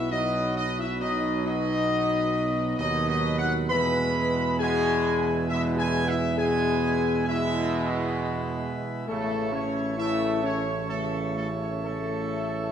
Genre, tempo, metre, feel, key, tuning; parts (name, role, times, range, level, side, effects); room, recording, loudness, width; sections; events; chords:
classical, ceremonial fanfare; 67 BPM; 3/4; straight; E major; A4 = 441 Hz
dark trumpet section; melody; 0.0-12.7 s; A4 to B5; -29 LUFS; equal
clear trombone section; sustained chords; 0.0-12.7 s; B2 to A3; -33 LUFS; right 3 dB
dark French horn section; sustained chords; 0.0-12.7 s; A3 to B4; -30 LUFS; left 4 dB
pipe organ, principal chorus; sustained chords; 0.0-12.7 s; B2 to C#5; -32 LUFS; equal
dark tuba; bass; 0.0-12.7 s; A1 to E2; -30 LUFS; right 3 dB
wet recital hall reverb, RT60 1.5 s; -24 LUFS; side -8 dB against mid
0.0-12.7 A section
0.0 B; 3.7 E; 9.1 A